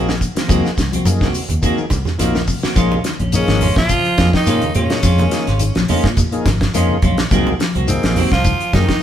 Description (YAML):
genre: afrobeat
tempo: 106 BPM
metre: 4/4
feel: swing 54% on 16ths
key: Bb minor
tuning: A4 = 441 Hz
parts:
  - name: combo organ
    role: accompaniment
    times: 0.0-9.0 s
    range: F3 to Ab4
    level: -24 LUFS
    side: left 3 dB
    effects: none
  - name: clean electric guitar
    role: stabs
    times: 0.0-8.9 s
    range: Eb3 to Gb4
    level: -24 LUFS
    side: right 3 dB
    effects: none
  - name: fingered electric bass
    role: bass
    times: 0.0-8.8 s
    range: Ab1 to Bb2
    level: -19 LUFS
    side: equal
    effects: none
  - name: damped 70s drum kit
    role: drums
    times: 0.1-9.0 s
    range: hi-hat, kick drum, snare drum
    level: -19 LUFS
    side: equal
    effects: none
  - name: shekere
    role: percussion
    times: 0.1-8.9 s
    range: none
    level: -26 LUFS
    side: left 2 dB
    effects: none
  - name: semi-hollow electric guitar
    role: arpeggios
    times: 0.2-9.0 s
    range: C3 to Ab3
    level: -25 LUFS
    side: left 6 dB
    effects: none
  - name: congas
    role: percussion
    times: 0.5-8.9 s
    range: none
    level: -24 LUFS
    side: right 2 dB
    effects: none
  - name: mellow trombone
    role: second line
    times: 3.3-9.0 s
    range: C3 to F3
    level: -27 LUFS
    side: right 3 dB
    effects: none
  - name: warm trombone section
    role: second line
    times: 3.3-9.0 s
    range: C3 to F3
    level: -28 LUFS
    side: equal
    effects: none
  - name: raspy tenor saxophone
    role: melody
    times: 3.4-9.0 s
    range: C4 to F4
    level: -21 LUFS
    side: equal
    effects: none
room: wet stone room reverb, RT60 1.0 s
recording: band playing live in one room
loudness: -14 LUFS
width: side -10 dB against mid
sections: 0.0-2.8 A section; 2.8-9.0 B section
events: none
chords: 0.0 Cm7b5; 2.8 Bbm7; 7.3 Cm7b5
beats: | 0.49 1.06 1.63 2.19 | 2.76 3.33 3.90 4.47 | 5.04 5.60 6.17 6.74 | 7.31 7.88 8.45 9.02